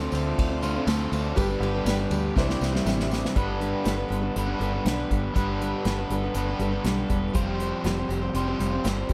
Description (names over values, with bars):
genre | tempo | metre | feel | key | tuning
folk rock and heartland rock | 120 BPM | 4/4 | straight | unclear | A4 = 439 Hz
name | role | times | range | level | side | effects
dark upright piano | accompaniment | 0.0-3.4 s | E4 to D5 | -39 LUFS | equal | none
picked steel-string acoustic guitar | accompaniment | 0.0-9.1 s | C3 to C5 | -32 LUFS | equal | none
crunchy overdriven guitar | riff | 0.0-9.1 s | G2 to C5 | -31 LUFS | equal | none
fingered electric bass | bass | 0.0-9.1 s | E1 to D2 | -32 LUFS | equal | none
unplugged drum kit | drums | 0.1-9.1 s | hi-hat, kick drum, ride cymbal, snare drum | -32 LUFS | equal | none
tambourine | percussion | 0.1-3.2 s | none | -48 LUFS | equal | none
room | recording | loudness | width
light reverb, small room ambience | none | -26 LUFS | mono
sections
0.0-3.4 A section; 3.4-9.1 B section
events
drum fill 2.4-3.4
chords
0.0 Dm7; 1.4 G; 2.4 Cadd9; 3.4 Gadd9; 7.3 Fsus2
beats
0.37 0.87 | 1.36 1.86 2.36 2.85 | 3.35 3.85 4.35 4.85 | 5.35 5.85 6.35 6.84 | 7.34 7.84 8.34 8.84